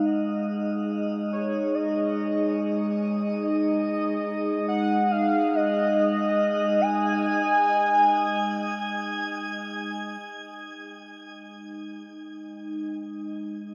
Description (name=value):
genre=ambient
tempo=free time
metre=none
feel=none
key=unclear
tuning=A4 = 436 Hz
part: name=warm velvety synth lead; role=melody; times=0.0-9.3 s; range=C#5 to G#5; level=-28 LUFS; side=equal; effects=chorus, diffuse ambient delay
part: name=analog drone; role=drone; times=0.0-13.7 s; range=G#3 to D#4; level=-30 LUFS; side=equal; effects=chorus
room=wet shimmer reverb, RT60 8.1 s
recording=none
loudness=-25 LUFS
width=mono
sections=0.0-10.2 A section; 10.2-13.7 B section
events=fade-in on soft synth lead 0.0-10.2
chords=0.0 G#5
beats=free time